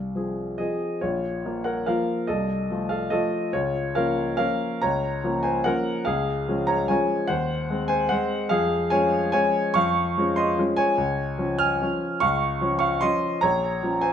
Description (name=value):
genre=classical, piano waltz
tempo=134-156 BPM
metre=3/4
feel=rubato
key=Bb minor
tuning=A4 = 439 Hz
part: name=clear grand piano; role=solo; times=0.0-14.1 s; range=Bb1 to F6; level=-22 LUFS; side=equal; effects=none
room=wet large studio reverb, RT60 1.4 s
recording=none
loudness=-22 LUFS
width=side -8 dB against mid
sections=0.0-1.0 A section; 1.0-14.1 B section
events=none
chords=0.0 Fm; 1.0 Bbm; 2.3 F7/C; 3.6 Bbm/Db; 6.1 Db; 7.3 Ab7/Eb; 8.5 Db/F; 11.0 Db; 13.4 Bbm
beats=0.15 0.59 | 1.02 1.45 1.87 | 2.29 2.71 3.13 | 3.55 3.96 4.39 | 4.83 5.24 5.66 | 6.07 6.48 6.90 | 7.30 7.71 8.12 | 8.52 8.91 9.33 | 9.76 10.17 10.58 | 10.98 11.39 11.82 | 12.22 12.61 13.02 | 13.42 13.82